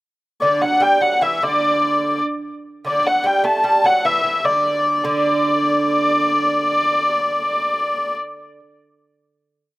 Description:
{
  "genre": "medieval dance",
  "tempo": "100 BPM (dotted quarters)",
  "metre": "6/8",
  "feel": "straight",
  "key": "D major",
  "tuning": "A4 = 440 Hz",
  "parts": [
    { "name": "dark hurdy-gurdy", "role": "melody", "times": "0.4-8.1 s", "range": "D5 to A5", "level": "-16 LUFS", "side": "left 1 dB", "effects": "none" },
    { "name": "lute", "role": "second line", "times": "0.4-8.6 s", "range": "D3 to A3", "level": "-23 LUFS", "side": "right 3 dB", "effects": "none" }
  ],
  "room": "little or no reverb",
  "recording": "recorded outdoors, with no room sound",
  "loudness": "-15 LUFS",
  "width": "side -18 dB against mid",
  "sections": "0.2-5.0 A section; 5.0-7.4 final note",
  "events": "none",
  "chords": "none",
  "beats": "| 0.20 0.81 | 1.42 2.03 | 2.64 3.25 | 3.85 4.45 | 5.04 5.63 | 6.22 6.81"
}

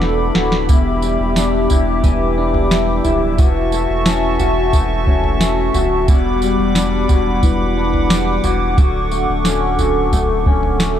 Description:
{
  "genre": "dream pop",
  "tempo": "89 BPM",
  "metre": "4/4",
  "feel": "straight",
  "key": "E dorian",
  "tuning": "A4 = 440 Hz",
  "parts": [
    { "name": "hollow soft pad", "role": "sustained chords", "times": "0.0-11.0 s", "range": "G3 to D6", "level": "-20 LUFS", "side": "equal", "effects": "chorus" },
    { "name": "electric guitar through a small old amp", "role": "arpeggios", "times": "0.0-11.0 s", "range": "E2 to F#4", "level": "-19 LUFS", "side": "left 4 dB", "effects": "analog chorus, tape echo" },
    { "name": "saturated sub bass", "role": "bass", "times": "0.0-11.0 s", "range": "D1 to E1", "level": "-21 LUFS", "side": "equal", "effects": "none" },
    { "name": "soft vintage rhythm box", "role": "drums", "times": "0.0-11.0 s", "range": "kick drum, snare drum, tambourine, toms", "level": "-16 LUFS", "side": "right 1 dB", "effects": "overdrive" }
  ],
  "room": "light reverb",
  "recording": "dark, warm production",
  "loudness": "-13 LUFS",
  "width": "side -10 dB against mid",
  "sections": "0.0-11.0 A section",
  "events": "drum fill 0.0-0.7",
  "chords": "0.0 Bm7/E; 0.7 Em7; 3.4 F#m7/E; 6.1 Gmaj7/E; 8.8 Dmaj7",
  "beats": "0.01 | 0.69 1.36 2.04 2.71 | 3.39 4.06 4.74 5.41 | 6.08 6.76 7.43 8.11 | 8.78 9.45 10.13 10.80"
}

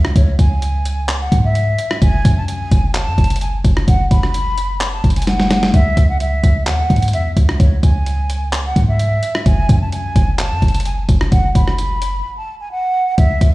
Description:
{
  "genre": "hip hop, trap",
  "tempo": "129 BPM",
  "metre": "4/4",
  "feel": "half-time",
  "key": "C# minor",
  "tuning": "A4 = 440 Hz",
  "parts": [
    { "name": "clean 808-style bass", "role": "bass", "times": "0.0-13.5 s", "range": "F#1 to G#2", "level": "-17 LUFS", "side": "equal", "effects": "none" },
    { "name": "boom bap sampler-style drum kit", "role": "drums", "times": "0.0-13.5 s", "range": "handclaps, hi-hat, kick drum, rim click, snare drum", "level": "-15 LUFS", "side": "equal", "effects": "overdrive" },
    { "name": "breathy concert flute", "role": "melody", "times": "0.2-13.5 s", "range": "C#5 to B5", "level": "-22 LUFS", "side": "right 1 dB", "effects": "low-pass filter" }
  ],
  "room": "light reverb",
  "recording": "played on a big sound system in a bare room, large studio reverb, faint mains hum",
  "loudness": "-13 LUFS",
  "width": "side -19 dB against mid",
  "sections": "0.0-13.2 A section",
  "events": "drum fill 5.3-5.7; break 12.2-13.2",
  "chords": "0.0 C#m; 2.0 N.C.; 5.7 C#m; 9.5 N.C.",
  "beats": "| 0.16 0.62 1.09 1.55 | 2.02 2.48 2.95 3.41 | 3.88 4.34 4.81 5.27 | 5.74 6.20 6.67 7.13 | 7.60 8.06 8.53 8.99 | 9.46 9.92 10.39 10.86 | 11.32 11.79 12.25 12.71 | 13.18"
}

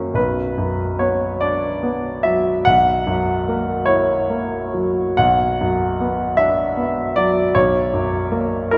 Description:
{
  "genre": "classical, romantic nocturne for solo piano",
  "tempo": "44-52 BPM (dotted quarters)",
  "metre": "12/8",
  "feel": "rubato",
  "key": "B minor",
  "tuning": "A4 = 437 Hz",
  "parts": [
    { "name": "clear grand piano", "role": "solo", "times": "0.0-8.8 s", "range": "B1 to F#5", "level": "-19 LUFS", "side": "equal", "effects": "none" }
  ],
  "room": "wet cathedral reverb, RT60 6.1 s",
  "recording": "recorded in a church or concert hall",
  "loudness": "-19 LUFS",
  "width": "mono",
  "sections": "0.0-8.8 A section",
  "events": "none",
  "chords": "0.2 Bm; 2.7 F#7/B; 5.2 Bm; 7.6 F#/B",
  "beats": "| 0.16 1.42 2.67 3.87 | 5.18 6.39 7.56 8.72"
}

